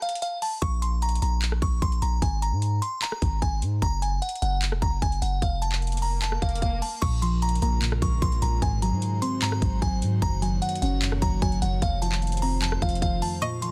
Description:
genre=hip hop, trap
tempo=150 BPM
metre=4/4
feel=half-time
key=Bb minor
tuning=A4 = 440 Hz
part: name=delicate synth tine bell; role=melody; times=0.0-13.7 s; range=F5 to Db6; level=-33 LUFS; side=equal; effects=chorus, digital delay
part: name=trap drum kit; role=drums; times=0.0-13.7 s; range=crash cymbal, handclaps, hi-hat, kick drum, rim click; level=-31 LUFS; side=equal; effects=vintage 12-bit sampler grit
part: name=long sustained 808-style bass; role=bass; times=0.6-13.2 s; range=F1 to Ab2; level=-28 LUFS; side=equal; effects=none
part: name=swell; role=sound effects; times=5.8-7.0 s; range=none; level=-44 LUFS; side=equal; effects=none
part: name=soft round pluck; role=accompaniment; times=7.0-13.7 s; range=F2 to Db4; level=-31 LUFS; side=equal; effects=chorus
part: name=airy breathy pad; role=sustained chords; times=7.3-13.7 s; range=Db3 to Db5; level=-39 LUFS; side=equal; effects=chorus
part: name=string-like resonator pluck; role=second line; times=13.4-13.7 s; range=Eb5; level=-36 LUFS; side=equal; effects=chorus
room=little or no reverb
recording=dense, heavily limited modern master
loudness=-25 LUFS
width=mono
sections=0.0-7.0 A section; 7.0-13.7 B section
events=break 0.0-0.6; swell 5.8-7.0; kick muted 13.4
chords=0.0 N.C.; 0.6 Bbmadd9; 2.2 Absus2; 3.8 Gbadd9; 5.4 F; 7.0 Bbm7; 8.6 Ab7; 10.2 Gb6; 11.8 F7

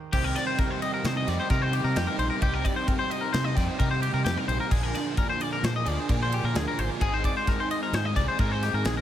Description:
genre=math rock and midwest emo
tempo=131 BPM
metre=5/4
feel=straight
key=unclear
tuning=A4 = 440 Hz
part: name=twangy electric guitar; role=accompaniment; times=0.0-2.0 s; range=Eb3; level=-43 LUFS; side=right 8 dB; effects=none
part: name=twangy electric guitar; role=arpeggios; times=0.1-9.0 s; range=G4 to Eb5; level=-29 LUFS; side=left 4 dB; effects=analog chorus
part: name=overdriven electric guitar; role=riff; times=0.1-9.0 s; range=Ab2 to Ab4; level=-31 LUFS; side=right 2 dB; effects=analog chorus
part: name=overdriven fingered electric bass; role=bass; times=0.1-9.0 s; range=Ab1 to C3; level=-28 LUFS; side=equal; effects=none
part: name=modern studio drum kit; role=drums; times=0.1-9.0 s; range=crash cymbal, kick drum, ride cymbal, snare drum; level=-29 LUFS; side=equal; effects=none
room=light reverb, small room reverb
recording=none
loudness=-24 LUFS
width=side -11 dB against mid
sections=0.1-9.0 A section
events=none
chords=0.1 Cm7; 4.7 Bb7; 7.0 Ab

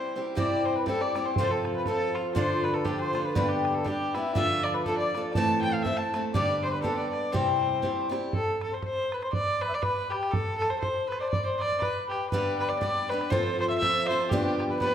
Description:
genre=celtic folk, Celtic polka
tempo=120 BPM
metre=2/4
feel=swing 58% on 8ths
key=C major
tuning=A4 = 441 Hz
part: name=warm fiddle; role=melody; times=0.0-14.9 s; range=E4 to A5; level=-29 LUFS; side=equal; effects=none
part: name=picked acoustic archtop guitar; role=accompaniment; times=0.0-8.3, 12.3-14.9 s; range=G2 to A4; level=-28 LUFS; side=left 1 dB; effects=none
part: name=mellow accordion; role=second line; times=0.4-14.9 s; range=E4 to A5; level=-34 LUFS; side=left 1 dB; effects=none
part: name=bodhran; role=percussion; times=0.4-14.9 s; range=none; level=-33 LUFS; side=right 2 dB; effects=none
room=wet recital hall reverb, RT60 1.7 s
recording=recorded in a church or concert hall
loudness=-25 LUFS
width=side -9 dB against mid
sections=0.4-8.3 A section; 8.3-14.9 B section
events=none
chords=0.4 C; 1.4 F/C; 2.4 Dm; 3.4 G; 4.4 Dm; 5.3 Am; 6.3 G; 7.3 C; 8.3 N.C.; 11.3 G; 13.3 F; 14.3 G7

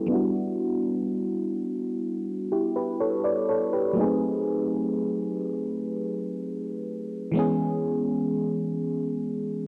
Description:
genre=R&B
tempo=62 BPM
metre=4/4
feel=straight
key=unclear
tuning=A4 = 440 Hz
part: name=FM electric piano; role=solo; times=0.0-9.7 s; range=E3 to D5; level=-27 LUFS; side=equal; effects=chorus, low-pass filter, cassette tape
room=light reverb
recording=home recording on cassette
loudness=-27 LUFS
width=mono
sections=0.1-9.7 A section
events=filter sweep on FM electric piano 0.1-9.7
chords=0.1 Em9; 4.0 G#7b9; 7.3 C#m7

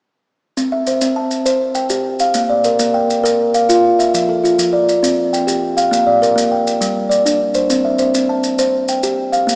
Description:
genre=southern african traditional, mbira-style interlocking cycle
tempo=135 BPM (dotted quarters)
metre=12/8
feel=straight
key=C mixolydian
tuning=A4 = 441 Hz
part: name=kalimba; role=arpeggios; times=0.6-9.6 s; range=F3 to A5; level=-16 LUFS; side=equal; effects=none
part: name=maracas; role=percussion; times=0.6-9.6 s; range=none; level=-27 LUFS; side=equal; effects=none
room=wet lush hall reverb, RT60 2.4 s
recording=rough home demo mix, small speaker sound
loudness=-16 LUFS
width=mono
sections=0.6-9.6 A section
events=none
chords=0.6 C; 2.4 Bb; 4.1 F; 5.0 C5; 5.9 Bb; 6.8 G5; 7.7 C

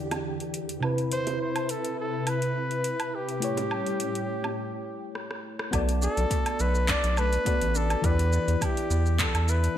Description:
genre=sunset chillout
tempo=104 BPM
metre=4/4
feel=swing 53% on 16ths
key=B minor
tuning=A4 = 440 Hz
part: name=mellow FM electric piano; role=accompaniment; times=0.0-9.8 s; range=C3 to D5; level=-32 LUFS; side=left 2 dB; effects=chorus, auto-pan
part: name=soft string machine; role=sustained chords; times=0.0-4.6 s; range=E2 to B4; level=-33 LUFS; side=equal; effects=ensemble chorus, vintage 12-bit sampler grit
part: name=smooth R&B drum kit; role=drums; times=0.1-9.7 s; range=handclaps, hi-hat, rim click, shaker, woodblock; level=-32 LUFS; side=right 1 dB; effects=gated reverb
part: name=bongos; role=percussion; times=0.1-4.5 s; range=none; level=-39 LUFS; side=right 3 dB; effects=none
part: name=warm flugelhorn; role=melody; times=1.1-9.8 s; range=G4 to D5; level=-30 LUFS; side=equal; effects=digital delay
part: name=concert harp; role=arpeggios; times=5.7-9.8 s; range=A3 to E4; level=-36 LUFS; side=left 6 dB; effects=digital delay
part: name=round analog bass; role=bass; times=5.7-9.7 s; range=A1 to E2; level=-25 LUFS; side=equal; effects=none
part: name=electronic kick drum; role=drums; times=5.7-9.3 s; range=none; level=-30 LUFS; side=right 1 dB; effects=none
room=moderate plate reverb, RT60 1.4 s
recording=bright 1980s-style digital production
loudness=-25 LUFS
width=side -11 dB against mid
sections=0.0-5.7 A section; 5.7-9.8 B section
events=break 4.6-5.7; drum fill 5.2-5.7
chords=0.0 Em7; 0.8 Cmaj7; 3.4 A7; 5.7 Bm7; 8.0 Em7

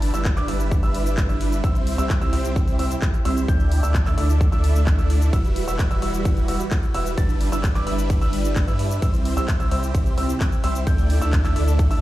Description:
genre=EDM, festival progressive house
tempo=130 BPM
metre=4/4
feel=straight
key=unclear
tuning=A4 = 440 Hz
part: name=lush unison pad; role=sustained chords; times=0.0-12.0 s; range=C3 to B4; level=-32 LUFS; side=equal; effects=chorus, phaser, sidechain pumping
part: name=dark grand piano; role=arpeggios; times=0.0-12.0 s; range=D6 to A6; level=-32 LUFS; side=right 1 dB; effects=sidechain pumping, ping-pong delay
part: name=big supersaw lead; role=riff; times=0.0-12.0 s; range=G3 to A5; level=-28 LUFS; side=right 1 dB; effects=phaser, vintage 12-bit sampler grit, sidechain pumping, ping-pong delay
part: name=saturated sub bass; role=bass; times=0.0-12.0 s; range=E1 to G2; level=-23 LUFS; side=equal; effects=sidechain pumping
part: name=pop drum kit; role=drums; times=0.0-12.0 s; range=handclaps, hi-hat, ride cymbal, shaker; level=-34 LUFS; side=left 1 dB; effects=none
part: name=electronic kick drum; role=drums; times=0.3-11.9 s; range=none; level=-20 LUFS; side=equal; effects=overdrive
room=digital ambience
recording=played on a big sound system in a bare room, large studio reverb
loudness=-18 LUFS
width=side -15 dB against mid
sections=0.0-12.0 A section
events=none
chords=0.0 G6; 1.6 C; 3.5 Dsus2; 5.3 Emadd9; 7.2 G6; 9.0 C; 10.9 Dsus2

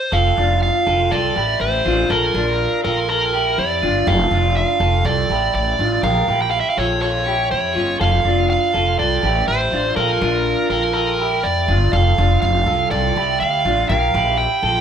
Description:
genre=jangly indie pop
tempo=122 BPM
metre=4/4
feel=straight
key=F major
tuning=A4 = 439 Hz
part: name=dark smooth lead guitar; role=melody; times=0.0-14.8 s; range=Bb4 to G5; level=-19 LUFS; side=right 4 dB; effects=overdrive
part: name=electric guitar through a small old amp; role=arpeggios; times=0.1-14.8 s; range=Db4 to Bb4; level=-20 LUFS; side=left 2 dB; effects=phaser
part: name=upright bass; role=bass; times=0.1-14.8 s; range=F1 to F2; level=-20 LUFS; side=equal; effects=none
room=moderate large studio reverb, RT60 1.1 s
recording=band playing live in one room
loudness=-15 LUFS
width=side -8 dB against mid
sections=0.1-14.8 A section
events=none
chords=0.1 F6; 2.1 Bbmaj7; 4.1 F6; 6.0 Bbm6; 8.0 F6; 10.0 Bbmaj7; 11.9 F6; 13.9 Bb5

